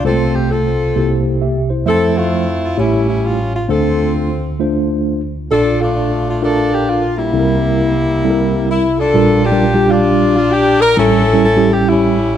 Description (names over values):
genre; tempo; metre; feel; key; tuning
gospel; 132 BPM; 4/4; swing 64% on 8ths; unclear; A4 = 440 Hz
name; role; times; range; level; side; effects
warm saxophone section; melody; 0.0-12.4 s; G3 to Bb4; -15 LUFS; left 2 dB; none
mellow tine electric piano; accompaniment; 0.0-12.4 s; A1 to E5; -15 LUFS; right 1 dB; medium stereo tremolo
room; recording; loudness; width
moderate echo chamber reverb, RT60 2.1 s; dark, warm production; -12 LUFS; side -10 dB against mid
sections
0.0-9.2 A section; 9.2-12.4 B section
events
none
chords
0.0 F/C; 1.0 C7; 1.9 Fmaj7; 2.8 A7; 3.7 Dm7; 5.5 Bbmaj7; 7.3 C7; 9.2 Bb6; 11.0 A7